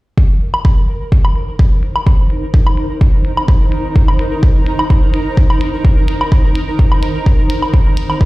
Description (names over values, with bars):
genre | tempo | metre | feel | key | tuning
minimal techno | 127 BPM | 4/4 | swing 53% on 16ths | C minor | A4 = 440 Hz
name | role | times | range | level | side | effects
electronic kick drum | drums | 0.2-8.3 s | none | -11 LUFS | equal | none
granular cloud pad | texture | 1.4-8.3 s | Eb4 to Bb5 | -21 LUFS | right 1 dB | built-in reverb, sidechain pumping
pulsing gated texture | texture | 0.2-8.3 s | Bb4 | -29 LUFS | right 2 dB | chorus, built-in reverb, sidechain pumping
electronic hi-hat | drums | 0.4-8.1 s | none | -30 LUFS | left 1 dB | low-pass filter on hats, low-pass filter on room
woodblock | percussion | 0.5-8.2 s | none | -20 LUFS | equal | dub echo
room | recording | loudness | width
little or no reverb | played on a big sound system in a bare room, stone room reverb | -11 LUFS | side -20 dB against mid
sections
0.2-8.3 A section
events
filter sweep on drum 0.2-8.3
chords
0.2 Cm7